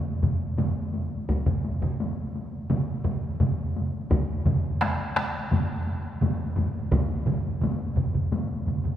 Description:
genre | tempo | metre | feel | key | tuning
japanese traditional, taiko drum ensemble | 85 BPM | 4/4 | straight | none | none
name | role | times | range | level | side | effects
solo taiko drums | percussion | 0.1-8.8 s | none | -32 LUFS | left 2 dB | none
taiko ensemble | percussion | 0.2-9.0 s | none | -28 LUFS | left 1 dB | none
taiko ensemble | percussion | 0.2-9.0 s | none | -29 LUFS | right 3 dB | none
solo taiko drums | percussion | 1.3-7.1 s | none | -31 LUFS | equal | none
room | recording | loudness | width
wet church reverb, RT60 3.7 s | recorded in a church or concert hall | -24 LUFS | side -11 dB against mid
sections
0.0-9.0 A section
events
none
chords
none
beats
0.59 | 1.29 2.00 2.70 3.40 | 4.11 4.81 5.51 6.22 | 6.92 7.62 8.32

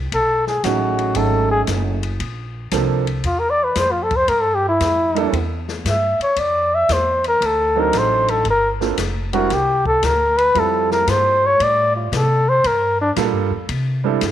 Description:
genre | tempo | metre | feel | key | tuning
jazz, small-group swing and bop | 115 BPM | 4/4 | swing 67% on 8ths | F major | A4 = 442 Hz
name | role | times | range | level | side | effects
upright bass | bass | 0.0-14.3 s | F1 to C3 | -23 LUFS | equal | none
breathy flugelhorn | melody | 0.1-13.1 s | D4 to E5 | -17 LUFS | left 1 dB | none
open jazz drum kit | drums | 0.1-14.3 s | hi-hat, kick drum, ride cymbal, snare drum | -28 LUFS | left 6 dB | none
warm concert grand piano | accompaniment | 0.6-14.2 s | F3 to Bb4 | -22 LUFS | right 12 dB | none
room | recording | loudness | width
light reverb, studio reverb | 1960s-style stereo with parts hard left and right | -16 LUFS | side -11 dB against mid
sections
0.0-14.3 A section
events
flugelhorn solo 0.0-14.3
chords
0.1 B13; 2.2 Bbmaj9; 4.3 Gm9; 5.3 Em; 6.4 Dm9; 7.4 D7b9; 8.5 Gm11; 9.5 Csus2; 10.5 Fmaj9; 12.6 Gm7; 13.7 C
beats
| 0.12 0.64 1.16 1.68 | 2.20 2.72 3.24 3.76 | 4.28 4.80 5.33 5.85 | 6.37 6.89 7.41 7.94 | 8.46 8.98 9.50 10.03 | 10.55 11.07 11.60 12.12 | 12.64 13.16 13.69 14.21

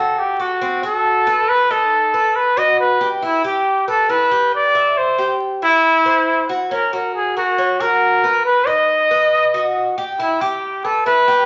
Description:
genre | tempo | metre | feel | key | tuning
latin | 138 BPM | 4/4 | straight | E minor | A4 = 436 Hz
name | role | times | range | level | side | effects
breathy trumpet | melody | 0.0-11.5 s | E4 to D#5 | -17 LUFS | equal | none
Cuban tres | arpeggios | 0.0-11.5 s | C4 to E5 | -26 LUFS | equal | none
room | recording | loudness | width
moderate large studio reverb, RT60 1.2 s | vinyl crackle, nothing above 7.5 kHz | -17 LUFS | mono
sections
0.0-10.2 A section; 10.2-11.5 A section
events
none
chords
0.0 F#dim; 1.5 B; 3.2 Em; 5.0 C; 6.7 F#; 8.5 B; 10.2 Em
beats
0.18 0.61 1.05 | 1.49 1.92 2.35 2.79 | 3.23 3.66 4.10 4.53 | 4.97 5.40 5.84 6.28 | 6.71 7.15 7.58 8.02 | 8.45 8.89 9.32 9.76 | 10.19 10.63 11.06

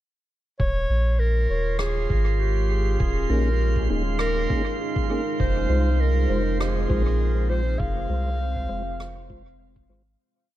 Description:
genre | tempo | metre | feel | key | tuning
ambient dub | 100 BPM | 4/4 | swing 54% on 16ths | F minor | A4 = 437 Hz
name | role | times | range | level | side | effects
mellow clarinet | melody | 0.6-9.6 s | G4 to F5 | -29 LUFS | equal | dub echo
deep dark ambient pad | sustained chords | 2.4-10.2 s | Ab3 to F5 | -32 LUFS | right 2 dB | chorus, built-in reverb
soft dub sub bass | bass | 0.6-10.2 s | Eb1 to C2 | -23 LUFS | equal | none
electronic kick drum | drums | 0.6-9.9 s | none | -26 LUFS | equal | none
drifting glass-harmonics texture | texture | 1.1-10.2 s | F4 to F5 | -34 LUFS | right 7 dB | chorus, built-in reverb
rim click | drums | 1.8-9.1 s | none | -37 LUFS | equal | dub echo
mellow tonewheel organ | stabs | 3.3-10.0 s | Ab3 to C5 | -31 LUFS | left 2 dB | fast rotary speaker, dub echo
room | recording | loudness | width
studio reverb | none | -21 LUFS | side -14 dB against mid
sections
0.6-10.2 groove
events
fade-out 7.0-10.2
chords
0.6 Eb7sus4; 5.4 Fm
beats
| 0.60 1.20 1.80 2.40 | 3.00 3.60 4.20 4.80 | 5.40 6.00 6.60 7.20 | 7.80 8.40 9.00 9.60

